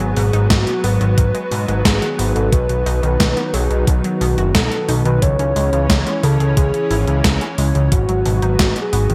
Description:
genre	synthwave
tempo	89 BPM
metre	4/4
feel	straight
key	C# minor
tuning	A4 = 440 Hz
part	warm velvety synth lead	melody	0.0-9.1 s	F#4 to C#5	-24 LUFS	equal	chorus, digital delay
part	lush unison pad	sustained chords	0.0-9.1 s	D#3 to C#4	-26 LUFS	equal	chorus, sidechain pumping
part	analog pluck	arpeggios	0.0-9.1 s	B2 to G#4	-29 LUFS	equal	chorus, vintage 12-bit sampler grit, digital delay
part	fat analog bass	bass	0.0-9.1 s	F#1 to G#2	-20 LUFS	equal	sidechain pumping
part	gated 80s digital drum machine	drums	0.0-9.1 s	hi-hat, snare drum	-23 LUFS	equal	gated reverb, gated reverb snare, overdrive
part	electronic kick drum	drums	0.5-8.7 s	none	-20 LUFS	equal	overdrive
room	light reverb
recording	bright 1980s-style digital production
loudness	-17 LUFS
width	mono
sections	0.0-9.1 A section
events	none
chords	0.0 G#m7; 2.5 B; 5.2 C#m; 7.9 G#m7

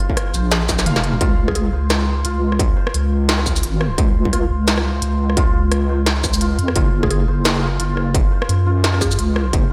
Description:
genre	half-time drum and bass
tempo	173 BPM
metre	4/4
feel	swing 57% on 16ths, half-time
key	unclear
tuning	A4 = 440 Hz
part	santur	arpeggios	0.0-9.7 s	F4 to F5	-30 LUFS	equal	analog delay
part	industrial drum kit	drums	0.0-9.6 s	hi-hat, rim click, shaker, snare drum, toms	-24 LUFS	equal	none
part	electronic kick drum	drums	0.1-9.6 s	none	-21 LUFS	equal	distortion
part	deep soft wobble bass	bass	0.3-9.7 s	F1 to Gb2	-20 LUFS	equal	chorus
part	mallet-like synth pluck	melody	1.5-1.6, 7.0-9.4 s	Ab4	-31 LUFS	equal	chorus, vintage 12-bit sampler grit, analog delay
room	light reverb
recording	none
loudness	-18 LUFS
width	mono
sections	0.0-9.7 A section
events	drum fill 0.7-1.2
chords	0.0 Bb5; 1.2 Db; 6.8 N.C.

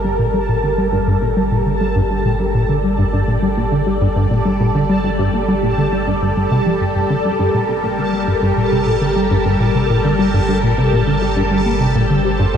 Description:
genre	ambient, sequencer-driven space music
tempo	102 BPM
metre	4/4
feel	straight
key	G minor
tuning	A4 = 440 Hz
part	lush unison pad	sustained chords	0.0-12.6 s	G3 to D5	-19 LUFS	left 1 dB	chorus, phaser, shimmer reverb
part	plucky analog bass	riff	0.0-12.6 s	G2 to G3	-17 LUFS	equal	lush chorus, ping-pong delay
part	warm sub bass	bass	0.0-12.6 s	G1	-24 LUFS	equal	none
part	bubbling stepped-filter texture	texture	0.0-12.6 s	A5	-26 LUFS	right 2 dB	chorus, built-in reverb, shimmer reverb
room	wet huge ambient reverb, RT60 7.5 s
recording	none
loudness	-14 LUFS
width	side -8 dB against mid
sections	0.0-12.6 A section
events	filter sweep on analog synth bass 0.0-12.6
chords	0.0 Gmadd9

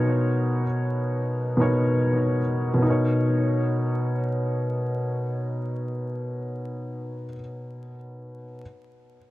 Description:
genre	hip hop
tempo	free time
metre	none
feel	none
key	B major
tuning	A4 = 440 Hz
part	dark upright piano	accompaniment	0.0-8.6 s	B2 to C#5	-23 LUFS	equal	cassette tape, tape echo
room	light reverb, small room reverb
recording	echo-heavy mix, vinyl crackle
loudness	-23 LUFS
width	side -17 dB against mid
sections	0.0-2.8 A section; 2.8-6.1 B section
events	none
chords	0.0 Bmaj9

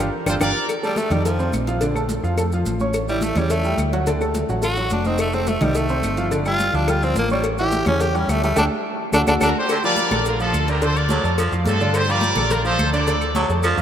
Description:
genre	latin, salsa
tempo	213 BPM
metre	4/4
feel	straight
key	unclear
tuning	A4 = 440 Hz
part	warm concert grand piano	accompaniment	0.0-13.8 s	C#3 to Eb6	-24 LUFS	right 1 dB	none
part	hollow-body short-scale fingered electric bass	bass	0.0-13.8 s	F1 to G2	-23 LUFS	equal	none
part	brilliant trumpet section	melody	0.3-0.7, 9.4-13.5 s	F4 to D5	-23 LUFS	equal	none
part	bongos and cowbell	percussion	0.3-13.8 s	none	-29 LUFS	left 4 dB	none
part	claves	percussion	0.3-13.8 s	none	-36 LUFS	left 5 dB	none
part	congas	percussion	0.3-13.8 s	none	-28 LUFS	left 1 dB	none
part	maracas	percussion	0.3-13.8 s	none	-37 LUFS	right 5 dB	none
part	growling tenor saxophone	melody	0.8-9.5 s	F3 to G4	-24 LUFS	equal	none
part	raspy baritone saxophone	second line	9.7-13.8 s	C3 to G3	-26 LUFS	right 2 dB	none
room	wet cathedral reverb, RT60 4.8 s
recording	in a vast, echoing space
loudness	-18 LUFS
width	side -9 dB against mid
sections	0.7-9.7 A section; 9.7-13.8 B section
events	drum fill 0.0-0.7, 8.6-9.7; band accent 0.0-0.7, 8.6-9.7; tenor saxophone solo 0.7-9.7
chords	0.0 Gm7; 0.7 F7; 1.8 Bbmaj7; 2.9 A7; 4.1 D; 5.2 F7; 6.3 Gsus2; 7.4 A7; 8.6 Dsus4; 9.1 D; 9.7 Bbmaj7; 10.8 D; 11.4 F; 11.9 Bbmaj7; 13.1 D

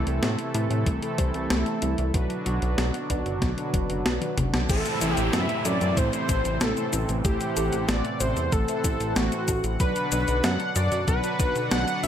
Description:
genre	synthwave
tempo	94 BPM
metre	4/4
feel	straight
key	A dorian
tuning	A4 = 439 Hz
part	brassy analog pad	sustained chords	0.0-12.1 s	A2 to F#5	-31 LUFS	right 1 dB	chorus, tremolo
part	thumb-piano-like synth pluck	arpeggios	0.0-12.1 s	F#3 to C5	-34 LUFS	left 1 dB	chorus, digital delay
part	mellow synth brass	stabs	0.0-12.0 s	C4 to D5	-35 LUFS	right 2 dB	chorus, phaser, digital delay
part	chorused synth bass	bass	0.0-12.1 s	F#1 to A2	-27 LUFS	equal	none
part	clean 12-bit digital drum machine	drums	0.1-12.1 s	crash cymbal, hi-hat, shaker, snare drum, toms	-29 LUFS	left 1 dB	gated reverb
part	electronic kick drum	drums	0.9-11.5 s	none	-26 LUFS	equal	none
part	wide unison lead	melody	4.7-12.1 s	F#4 to F#5	-28 LUFS	equal	tape echo
part	downlifter	sound effects	4.7-9.8 s	none	-33 LUFS	equal	none
room	light reverb, digital ambience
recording	none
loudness	-22 LUFS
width	side -9 dB against mid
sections	0.0-4.7 A section; 4.7-12.1 B section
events	drum fill 4.2-4.7; band accent 4.5-4.9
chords	0.0 Am/C; 2.1 Bm; 4.7 Am; 9.8 Bm

